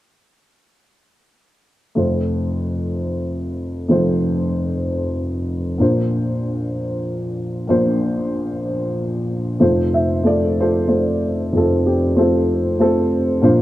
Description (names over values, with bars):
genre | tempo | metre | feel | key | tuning
folk | 94 BPM | 3/4 | straight | F major | A4 = 440 Hz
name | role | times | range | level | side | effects
dark upright piano | melody | 2.0-13.6 s | F1 to E5 | -17 LUFS | equal | none
room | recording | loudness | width
little or no reverb | recorded outdoors, with no room sound | -17 LUFS | side -15 dB against mid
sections
2.0-9.6 A section; 9.6-13.6 B section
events
none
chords
2.0 F; 5.8 Bbadd9; 9.6 F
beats
| 1.97 2.62 3.25 | 3.89 4.53 5.17 | 5.80 6.43 7.06 | 7.69 8.33 8.97 | 9.62 10.26 10.89 | 11.53 12.17 12.80 | 13.43